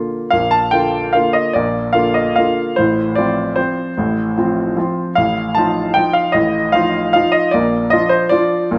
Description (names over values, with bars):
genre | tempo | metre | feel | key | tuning
classical, piano waltz | 150 BPM | 3/4 | uneven beats, rubato | Bb major | A4 = 440 Hz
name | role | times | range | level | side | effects
clear grand piano | solo | 0.0-8.8 s | A1 to A5 | -16 LUFS | equal | none
room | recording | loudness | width
moderate recital hall reverb, RT60 1.5 s | none | -16 LUFS | mono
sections
0.3-8.8 A section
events
none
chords
0.3 Bb; 2.8 F/A; 5.2 F7/A; 7.5 Bb